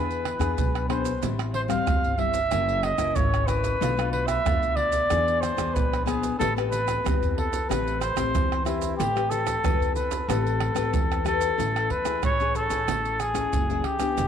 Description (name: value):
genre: samba and choro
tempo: 93 BPM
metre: 4/4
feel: straight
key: A minor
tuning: A4 = 441 Hz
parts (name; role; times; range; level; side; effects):
- breathy trumpet; melody; 0.0-14.3 s; E4 to F5; -26 LUFS; equal; none
- nylon-string guitar; accompaniment; 0.0-14.3 s; A2 to B4; -30 LUFS; left 12 dB; none
- upright bass; bass; 0.0-14.3 s; E1 to A2; -30 LUFS; equal; none
- maracas, pandeiro, tamborim and surdo; percussion; 0.1-14.3 s; none; -28 LUFS; right 4 dB; none
room: wet spring reverb, RT60 2.4 s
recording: 1960s-style stereo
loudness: -22 LUFS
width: side -8 dB against mid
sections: 0.0-11.6 A section; 11.6-14.3 B section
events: none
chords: 0.0 E7; 1.2 Am7; 2.5 F#7; 3.8 Bm7b5; 5.1 E7; 6.4 Am9; 11.6 Amaj7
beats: 0.58 | 1.23 1.88 2.52 3.17 | 3.82 4.46 5.11 5.76 | 6.41 7.05 7.70 8.35 | 9.00 9.64 10.29 10.94 | 11.59 12.24 12.88 13.53 | 14.18